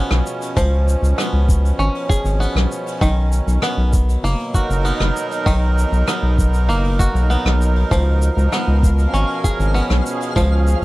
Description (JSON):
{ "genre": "folktronica", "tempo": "98 BPM", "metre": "4/4", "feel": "straight", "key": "Db mixolydian", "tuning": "A4 = 439 Hz", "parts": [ { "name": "accordion", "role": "sustained chords", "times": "0.0-10.8 s", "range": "Cb3 to Bb4", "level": "-25 LUFS", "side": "right 2 dB", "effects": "light tremolo tuning" }, { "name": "bluegrass banjo", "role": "arpeggios", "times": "0.0-10.8 s", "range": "Eb3 to Ab4", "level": "-23 LUFS", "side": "equal", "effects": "tape echo" }, { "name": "round analog bass", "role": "bass", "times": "0.1-10.8 s", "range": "Gb1 to Db2", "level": "-16 LUFS", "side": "equal", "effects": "none" }, { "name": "soft brush drum kit", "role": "drums", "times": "0.1-10.8 s", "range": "hi-hat, rim click, shaker", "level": "-28 LUFS", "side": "left 1 dB", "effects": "none" }, { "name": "electronic kick drum", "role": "drums", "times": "0.6-10.5 s", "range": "none", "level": "-17 LUFS", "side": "equal", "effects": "none" }, { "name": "twinkling granular texture", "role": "texture", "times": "8.3-10.8 s", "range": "F5", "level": "-32 LUFS", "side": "left 2 dB", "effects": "built-in reverb" } ], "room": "little or no reverb", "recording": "none", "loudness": "-15 LUFS", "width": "side -19 dB against mid", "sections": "0.0-10.8 A section", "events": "none", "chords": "0.0 Db7; 3.0 Cbmaj7; 7.9 Db7", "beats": "| 0.56 1.18 1.79 2.40 | 3.01 3.63 4.24 4.85 | 5.46 6.08 6.69 7.30 | 7.91 8.52 9.14 9.75 | 10.36" }